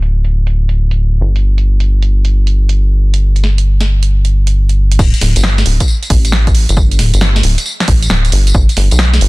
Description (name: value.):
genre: UK garage, two-step garage.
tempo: 135 BPM.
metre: 4/4.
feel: swing 66% on 16ths.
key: unclear.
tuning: A4 = 436 Hz.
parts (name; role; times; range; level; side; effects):
rubbery square bass; bass; 0.0-9.3 s; D1 to B1; -10 LUFS; equal; sidechain pumping.
punchy analog drum machine; drums; 0.0-9.3 s; crash cymbal, hi-hat, snare drum, tambourine; -17 LUFS; right 1 dB; none.
electronic kick drum; drums; 5.0-8.7 s; none; -12 LUFS; equal; none.
room: digital ambience.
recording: dense, heavily limited modern master, low-pass filter.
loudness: -9 LUFS.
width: side -22 dB against mid.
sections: 0.0-5.0 A section; 5.0-9.3 B section.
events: filter sweep 0.0-5.0; drop 5.0-9.3.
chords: none.